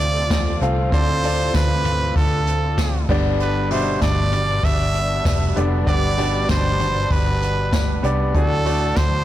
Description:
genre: piano-driven pop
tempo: 97 BPM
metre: 4/4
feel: swing 56% on 16ths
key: unclear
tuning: A4 = 440 Hz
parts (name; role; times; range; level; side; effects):
- brilliant trumpet; melody; 0.0-9.2 s; A4 to E5; -23 LUFS; right 2 dB; ping-pong delay
- clear baby grand piano; accompaniment; 0.0-9.2 s; G2 to F5; -24 LUFS; left 1 dB; none
- warm studio string section; sustained chords; 0.0-9.2 s; B2 to F4; -30 LUFS; left 1 dB; none
- vintage muted fingered electric bass; bass; 0.0-9.2 s; F1 to E2; -22 LUFS; equal; none
- jazz brush drum kit; drums; 0.0-9.1 s; crash cymbal, hi-hat, kick drum, snare drum, toms; -22 LUFS; equal; none
- tambourine; percussion; 0.3-9.1 s; none; -38 LUFS; left 4 dB; none
room: light reverb, studio reverb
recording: blown-out, overdriven recording, overdrive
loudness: -17 LUFS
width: side -13 dB against mid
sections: 0.0-9.2 A section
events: none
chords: 0.0 Dm7; 3.1 G; 8.3 D

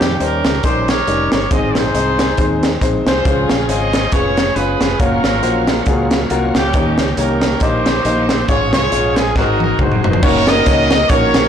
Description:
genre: uptempo gospel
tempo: 138 BPM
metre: 4/4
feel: swing 56% on 8ths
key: Db major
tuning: A4 = 441 Hz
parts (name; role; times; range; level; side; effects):
- clear horn section; melody; 0.0-11.5 s; Bb3 to Eb5; -17 LUFS; equal; none
- warm grand piano; accompaniment; 0.0-11.4 s; Ab2 to Eb5; -19 LUFS; left 2 dB; none
- fingered electric bass; bass; 0.0-11.5 s; F1 to F2; -22 LUFS; equal; none
- crisp fusion drum kit; drums; 0.0-11.4 s; crash cymbal, hi-hat, kick drum, snare drum, toms; -17 LUFS; equal; none
- bright tonewheel organ; sustained chords; 3.3-10.2 s; Eb3 to Ab4; -26 LUFS; right 2 dB; slow rotary speaker, overdrive, chorus vibrato
room: light reverb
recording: blown-out, overdriven recording, overdrive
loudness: -12 LUFS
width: side -8 dB against mid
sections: 0.0-10.2 A section; 10.2-11.5 B section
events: drum fill 9.4-10.2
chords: 0.0 Eb7; 1.5 Ab; 3.3 Dbmaj7; 4.1 Db7/F; 5.0 Gbmaj7; 6.7 Eb7; 8.5 Db/Ab; 9.4 Ab7; 10.2 Gb6

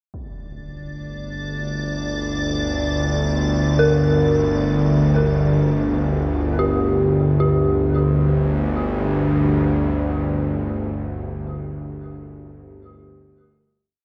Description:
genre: dark ambient drone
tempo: free time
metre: none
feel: none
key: G minor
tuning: A4 = 438 Hz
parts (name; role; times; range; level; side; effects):
- bowed-like drone; drone; 0.8-11.4 s; G1 to D2; -22 LUFS; equal; built-in reverb
- impact; percussion; 0.1-0.3 s; none; -42 LUFS; equal; low-pass filter on sfx
- icy glass pad; texture; 0.8-7.4 s; D5; -32 LUFS; equal; chorus, built-in reverb
- dark detuned synth bell; arpeggios; 3.8-13.6 s; G4 to Bb4; -26 LUFS; equal; chorus, diffuse ambient delay
room: wet plate reverb, RT60 3.5 s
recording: dreamy mix soaked in reverb, nothing above 10.7 kHz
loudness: -20 LUFS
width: mono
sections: 0.1-7.4 A section; 7.4-11.0 final chord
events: fade-in on impacts and reversed cymbals 0.1-7.4; fade-out on ambient pad 0.1-7.4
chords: 0.1 Gm

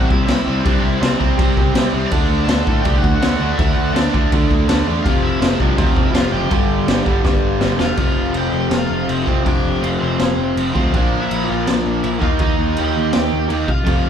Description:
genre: punk rock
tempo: 164 BPM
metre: 4/4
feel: straight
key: unclear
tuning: A4 = 441 Hz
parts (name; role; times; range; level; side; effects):
- raw garage guitar; melody; 0.0-14.1 s; C4 to A5; -24 LUFS; right 1 dB; overdrive
- distorted electric guitar; riff; 0.0-14.1 s; F2 to Eb4; -19 LUFS; equal; distortion
- picked electric bass; bass; 0.0-14.1 s; E1 to C3; -23 LUFS; equal; none
- raw garage drum kit; drums; 0.1-13.9 s; crash cymbal, kick drum, snare drum; -18 LUFS; equal; none
room: moderate large studio reverb, RT60 1.0 s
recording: band playing live in one room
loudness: -14 LUFS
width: side -8 dB against mid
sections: 0.0-8.0 A section; 8.0-14.1 B section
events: drum fill 7.2-8.0; half time 8.0-14.1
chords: 0.0 C; 2.1 D; 5.0 F5; 6.5 G5; 8.0 F5; 10.9 Bb; 12.2 Eb

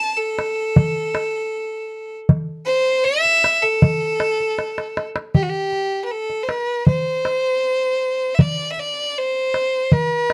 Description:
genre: Turkish makam ensemble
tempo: 79 BPM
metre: 4/4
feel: straight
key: A makam huseyni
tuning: A4 = 440 Hz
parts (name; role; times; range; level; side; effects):
- bright violin; melody; 0.0-10.3 s; F#4-34c to A5; -22 LUFS; equal; none
- darbuka; percussion; 0.4-10.3 s; none; -19 LUFS; equal; none
room: light reverb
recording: dark, warm production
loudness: -20 LUFS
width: mono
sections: 0.0-5.3 A section; 5.3-10.3 B section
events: drum fill 4.6-5.3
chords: none

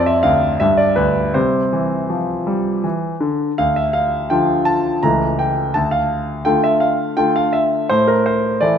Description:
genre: classical-period piano sonatina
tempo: 83 BPM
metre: 3/4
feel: rubato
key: C major, D minor from 3.6 s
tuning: A4 = 440 Hz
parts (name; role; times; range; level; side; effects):
- clear concert grand piano; solo; 0.0-8.8 s; C#2 to Bb5; -15 LUFS; equal; none
room: moderate recital hall reverb, RT60 1.6 s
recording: dark, warm production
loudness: -15 LUFS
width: side -8 dB against mid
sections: 0.0-3.6 A section; 3.6-8.8 B section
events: none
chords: 0.0 Dm7/F; 0.6 G; 1.4 C; 3.6 Dm; 5.0 A/C#; 5.7 Dm; 7.9 A5

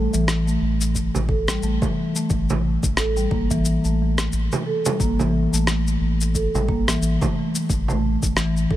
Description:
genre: organic downtempo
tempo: 89 BPM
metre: 4/4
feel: swing 58% on 16ths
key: unclear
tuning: A4 = 440 Hz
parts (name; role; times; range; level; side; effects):
- marimba with medium mallets; arpeggios; 0.0-8.8 s; E3 to A4; -23 LUFS; equal; low-pass filter, ping-pong delay
- round analog bass; bass; 0.0-8.8 s; A1; -23 LUFS; equal; none
- electronic cabasa and rim click; drums; 0.1-8.7 s; none; -27 LUFS; left 1 dB; none
- electronic kick drum; drums; 1.0-8.8 s; none; -25 LUFS; equal; none
- frame drum; percussion; 1.1-8.0 s; none; -28 LUFS; right 4 dB; none
room: small room ambience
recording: none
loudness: -19 LUFS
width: side -13 dB against mid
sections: 0.0-8.8 A section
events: filter sweep on marimba 0.0-8.8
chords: 0.0 A5; 2.3 N.C.; 7.7 A5

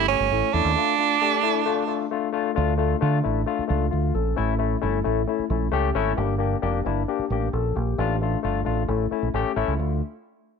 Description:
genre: uptempo 1960s-style soul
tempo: 133 BPM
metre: 4/4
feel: straight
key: D harmonic minor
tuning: A4 = 439 Hz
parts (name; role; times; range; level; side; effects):
- edgy tenor saxophone; melody; 0.0-2.1 s; C#4 to D4; -21 LUFS; right 15 dB; slapback echo
- barky tine electric piano; accompaniment; 0.0-10.0 s; A3 to A4; -24 LUFS; left 11 dB; wide subtle chorus
- deep dub fingered electric bass; bass; 0.0-10.0 s; F1 to D3; -25 LUFS; right 3 dB; none
room: light reverb, small room ambience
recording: 1960s-style stereo with parts hard left and right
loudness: -21 LUFS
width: side -6 dB against mid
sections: 0.0-2.6 A section; 2.6-9.8 B section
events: none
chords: 0.0 A; 0.8 Dm; 4.4 A; 6.2 Gm; 8.0 Dm/A; 8.9 A; 9.8 Dm

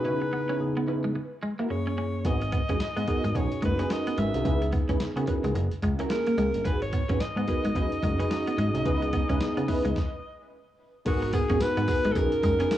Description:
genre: R&B, new jack swing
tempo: 109 BPM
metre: 4/4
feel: swing 60% on 16ths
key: C# dorian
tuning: A4 = 440 Hz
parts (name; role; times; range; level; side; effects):
- bright alto saxophone; melody; 0.0-12.8 s; F#4 to E5; -31 LUFS; equal; cassette tape
- mellow tine electric piano; accompaniment; 0.0-12.8 s; F#2 to B4; -30 LUFS; left 1 dB; phaser, cassette tape
- funky polysynth comp; stabs; 0.0-12.7 s; B3 to B4; -34 LUFS; right 2 dB; chorus, cassette tape, tape echo
- clean electric guitar; riff; 0.2-12.7 s; G#3 to C#4; -33 LUFS; right 2 dB; analog chorus, cassette tape
- fat analog bass; bass; 2.2-12.7 s; F#1 to C#3; -30 LUFS; equal; none
- dusty soul sampler-style drum kit; drums; 2.2-12.8 s; crash cymbal, hi-hat, kick drum, snare drum, tambourine; -30 LUFS; equal; none
room: light reverb, digital ambience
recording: home recording on cassette, small room ambience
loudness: -24 LUFS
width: side -12 dB against mid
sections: 0.0-11.1 A section; 11.1-12.8 B section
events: stop 10.0-11.1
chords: 0.0 C#m7; 1.1 F#7; 2.2 G#m7; 3.3 B6; 4.5 C#m7; 5.6 F#7; 6.7 G#m7; 7.8 B6; 8.9 C#m7; 10.0 N.C.; 11.1 G#m7; 12.2 B6

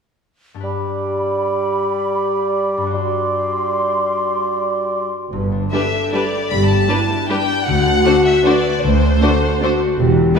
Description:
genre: classical, orchestral ballroom waltz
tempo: 140-171 BPM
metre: 3/4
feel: rubato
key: G major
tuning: A4 = 439 Hz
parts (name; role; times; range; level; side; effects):
- concert harp; arpeggios; 0.5-10.4 s; G2 to G5; -25 LUFS; left 4 dB; none
- mellow clarinet; second line; 0.6-5.1 s; F#4 to G4; -25 LUFS; equal; none
- mellow cor anglais; second line; 0.6-5.1 s; D5; -24 LUFS; right 2 dB; none
- mellow large flute ensemble; second line; 0.6-5.1 s; B5 to C6; -24 LUFS; right 1 dB; none
- mellow bassoon; accompaniment; 0.6-5.1 s; G3; -24 LUFS; right 1 dB; none
- mellow French horn section; sustained chords; 5.3-10.4 s; D4 to B4; -19 LUFS; left 3 dB; none
- clear chamber double bass section; bass; 5.3-10.3 s; E1 to D2; -21 LUFS; right 3 dB; none
- warm chamber cello section; bass; 5.3-10.3 s; D2 to G2; -22 LUFS; right 3 dB; none
- rich chamber violin section; melody; 5.7-10.4 s; C5 to B5; -20 LUFS; left 2 dB; none
- rich chamber violin section; second line; 5.7-10.4 s; F#4 to C5; -25 LUFS; left 1 dB; none
- rich symphonic viola section; accompaniment; 5.7-10.4 s; G3 to D4; -23 LUFS; equal; none
room: wet scoring stage reverb, RT60 2.0 s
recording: heard from further back in the room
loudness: -15 LUFS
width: side -6 dB against mid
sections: 0.6-5.3 A section; 5.3-10.4 B section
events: none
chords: 0.6 G; 3.0 D7/G; 5.3 G; 7.7 D7

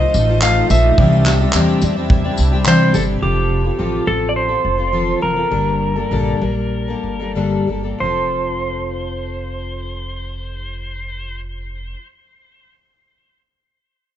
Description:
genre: acoustic pop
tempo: 91-107 BPM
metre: 4/4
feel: straight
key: F major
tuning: A4 = 440 Hz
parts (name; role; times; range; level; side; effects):
- clean lap steel guitar; melody; 0.0-11.4 s; G4 to F5; -21 LUFS; right 1 dB; digital delay
- fingerpicked twelve-string acoustic guitar; accompaniment; 0.0-12.0 s; G2 to C5; -20 LUFS; left 2 dB; none
- shimmering ambient pad; sustained chords; 0.0-3.2 s; C3 to E4; -26 LUFS; right 2 dB; chorus, built-in reverb
- upright bass; bass; 0.0-11.9 s; F1 to E2; -20 LUFS; equal; none
- modern studio drum kit; drums; 0.1-3.1 s; handclaps, kick drum, tambourine; -18 LUFS; equal; none
- tambourine; percussion; 0.4-2.8 s; none; -28 LUFS; right 5 dB; none
room: light reverb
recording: nothing above 8.0 kHz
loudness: -14 LUFS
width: side -11 dB against mid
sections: 0.0-3.2 A section; 3.2-8.0 B section; 8.0-10.6 C section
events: slowing down 3.2-8.0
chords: 0.0 F7/A; 1.0 Cadd9; 3.2 F; 5.5 Gmadd9; 8.0 F

